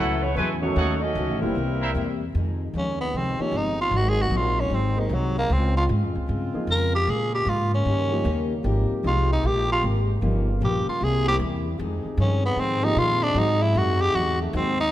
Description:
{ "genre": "jazz, big band swing", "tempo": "152 BPM", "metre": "4/4", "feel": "swing 66% on 8ths", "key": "unclear", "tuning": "A4 = 440 Hz", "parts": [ { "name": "mellow saxophone section", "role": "melody", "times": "0.0-2.2 s", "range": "F#3 to D#5", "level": "-28 LUFS", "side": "left 1 dB", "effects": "none" }, { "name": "muted trombone section", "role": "second line", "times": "0.0-2.2 s", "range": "E3 to D#4", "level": "-31 LUFS", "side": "right 2 dB", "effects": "none" }, { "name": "picked steel-string acoustic guitar", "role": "accompaniment", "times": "0.0-14.8 s", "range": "F2 to Bb4", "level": "-32 LUFS", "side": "left 4 dB", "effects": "none" }, { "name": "clear trumpet section", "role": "stabs", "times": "0.0-1.9 s", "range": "D#4 to G#5", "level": "-31 LUFS", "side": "right 3 dB", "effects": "none" }, { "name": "upright bass", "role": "bass", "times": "0.0-14.9 s", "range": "F#1 to Bb2", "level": "-25 LUFS", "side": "equal", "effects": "none" }, { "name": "dark baby grand piano", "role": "accompaniment", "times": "0.6-14.8 s", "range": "D#3 to C5", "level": "-32 LUFS", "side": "equal", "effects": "none" }, { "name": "bright trombone section", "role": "sustained chords", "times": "2.3-14.8 s", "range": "C3 to Ab4", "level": "-33 LUFS", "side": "equal", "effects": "none" }, { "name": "growling tenor saxophone", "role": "melody", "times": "2.8-14.9 s", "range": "Eb3 to Bb4", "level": "-24 LUFS", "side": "equal", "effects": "none" } ], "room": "light reverb", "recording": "close, detailed microphones", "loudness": "-21 LUFS", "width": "side -13 dB against mid", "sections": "0.0-2.3 A section; 2.3-14.9 B section", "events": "tenor saxophone solo 2.3-14.9", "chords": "0.0 A6; 0.8 D#m7b5; 1.6 C7; 2.3 Fm7; 3.9 Ab7; 5.5 Dbmaj7; 7.1 Bbm7; 7.9 Eb7; 8.6 Abmaj9; 10.2 Gm7b5; 11.0 C7; 11.8 Fm7; 13.4 Ab7" }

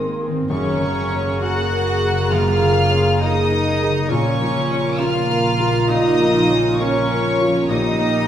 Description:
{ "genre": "cinematic, emotional film score for orchestra", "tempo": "67 BPM", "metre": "4/4", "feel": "rubato", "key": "Bb minor", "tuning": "A4 = 440 Hz", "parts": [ { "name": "warm studio violin section", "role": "melody", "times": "0.0-8.3 s", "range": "Db6 to Gb6", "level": "-26 LUFS", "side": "left 1 dB", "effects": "none" }, { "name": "dark clarinet", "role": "second line", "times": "0.0-8.3 s", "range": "F4 to Bb4", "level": "-28 LUFS", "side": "equal", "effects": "none" }, { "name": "mellow cor anglais", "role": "second line", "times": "0.0-8.3 s", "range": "Db4 to Gb4", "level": "-27 LUFS", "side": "right 1 dB", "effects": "none" }, { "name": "mellow hollow small flute group", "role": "second line", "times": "0.0-8.3 s", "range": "Bb5 to C6", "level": "-30 LUFS", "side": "left 1 dB", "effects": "none" }, { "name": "warm studio violin section", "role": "second line", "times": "0.0-8.3 s", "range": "Db5 to Gb5", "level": "-26 LUFS", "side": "left 2 dB", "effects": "none" }, { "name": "felt-muted upright piano", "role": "accompaniment", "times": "0.0-8.3 s", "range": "Gb2 to Bb4", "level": "-25 LUFS", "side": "left 1 dB", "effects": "none" }, { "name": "rich studio viola section", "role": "accompaniment", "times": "0.0-8.3 s", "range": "Bb3 to Bb4", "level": "-25 LUFS", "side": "right 2 dB", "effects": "none" }, { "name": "mellow French horn section", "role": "sustained chords", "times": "0.0-8.3 s", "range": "Bb3 to Bb4", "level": "-25 LUFS", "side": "equal", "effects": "none" }, { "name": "concert harp", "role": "arpeggios", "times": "0.0-8.3 s", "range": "Gb2 to Bb4", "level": "-26 LUFS", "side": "left 2 dB", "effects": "none" }, { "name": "rich studio double bass section", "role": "bass", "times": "0.0-8.3 s", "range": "Gb1 to Bb1", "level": "-24 LUFS", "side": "right 2 dB", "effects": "none" }, { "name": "warm studio cello section", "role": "bass", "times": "0.0-8.3 s", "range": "Db4 to Gb4", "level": "-26 LUFS", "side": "right 2 dB", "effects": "none" } ], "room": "wet recital hall reverb, RT60 1.6 s", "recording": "heard from further back in the room", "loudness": "-16 LUFS", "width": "side -10 dB against mid", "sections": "0.0-8.3 A section", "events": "none", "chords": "0.5 Gbadd9; 4.1 Bbm; 7.7 Eb7/Bb" }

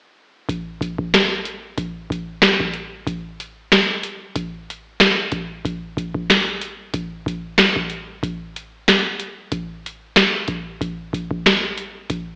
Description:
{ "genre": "hip hop", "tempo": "93 BPM", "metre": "4/4", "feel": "swing 55% on 16ths", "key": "none", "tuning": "none", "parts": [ { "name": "booming analog drum machine", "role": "drums", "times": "0.5-12.3 s", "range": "hi-hat, kick drum, snare drum", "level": "-18 LUFS", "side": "equal", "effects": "vintage 12-bit sampler grit" } ], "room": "wet digital room reverb, RT60 1.2 s", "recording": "home recording on cassette, AM radio sound", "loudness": "-18 LUFS", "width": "side -37 dB against mid", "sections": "0.5-5.6 A section; 5.6-12.4 B section", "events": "none", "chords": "none" }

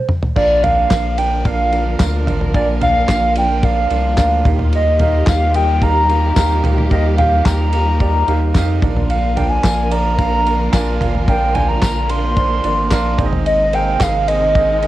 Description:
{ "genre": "piano-driven pop", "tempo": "110 BPM", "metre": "4/4", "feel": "straight", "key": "Bb mixolydian", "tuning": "A4 = 440 Hz", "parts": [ { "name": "hollow clarinet-like synth lead", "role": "melody", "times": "0.0-14.9 s", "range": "D5 to C6", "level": "-17 LUFS", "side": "equal", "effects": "chorus, phaser, cassette tape, plate reverb" }, { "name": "damped 70s drum kit", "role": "drums", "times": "0.1-14.9 s", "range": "crash cymbal, handclaps, kick drum, ride cymbal, snare drum, toms", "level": "-20 LUFS", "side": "equal", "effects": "cassette tape" }, { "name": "warm upright piano", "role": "accompaniment", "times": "0.4-14.9 s", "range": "Ab2 to Ab5", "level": "-22 LUFS", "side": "right 7 dB", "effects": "cassette tape, plate reverb" }, { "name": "warm studio string section", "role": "sustained chords", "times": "0.4-14.9 s", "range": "C3 to Bb4", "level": "-26 LUFS", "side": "left 1 dB", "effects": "cassette tape, plate reverb" }, { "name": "round analog bass", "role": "bass", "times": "0.4-14.9 s", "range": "Ab1 to F2", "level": "-18 LUFS", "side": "left 1 dB", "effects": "none" }, { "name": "tambourine", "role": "percussion", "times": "0.9-14.1 s", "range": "none", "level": "-32 LUFS", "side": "left 10 dB", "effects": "none" } ], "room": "light reverb", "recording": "home recording on cassette", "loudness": "-13 LUFS", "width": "side -15 dB against mid", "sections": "0.4-14.9 A section", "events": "drum fill 0.0-0.4; stop 0.0-0.4", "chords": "0.4 Bb; 4.5 Ebadd9; 8.8 Bb; 13.2 Abadd9" }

